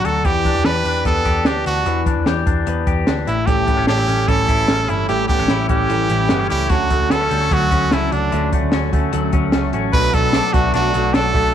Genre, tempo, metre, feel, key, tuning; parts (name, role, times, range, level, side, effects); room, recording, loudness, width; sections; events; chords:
jangly indie pop; 149 BPM; 4/4; straight; D major; A4 = 440 Hz
brilliant trumpet; melody; 0.0-11.5 s; D4 to B4; -19 LUFS; right 3 dB
clean electric guitar; arpeggios; 0.0-11.5 s; A2 to G4; -22 LUFS; left 9 dB; lush chorus
compact cocktail drum kit; drums; 0.0-11.4 s; crash cymbal, hi-hat, kick drum, snare drum; -20 LUFS; equal
vintage muted picked electric bass; bass; 0.1-11.5 s; G1 to E2; -22 LUFS; equal
fingerpicked plugged-in steel-string acoustic guitar; accompaniment; 3.5-11.5 s; A2 to A4; -25 LUFS; right 11 dB
light reverb, small room ambience; 1960s-style stereo with parts hard left and right; -15 LUFS; side -9 dB against mid
0.0-9.9 A section; 9.9-11.5 B section
0.2 Em7; 3.3 A7; 6.7 Dmaj7; 9.9 Bm7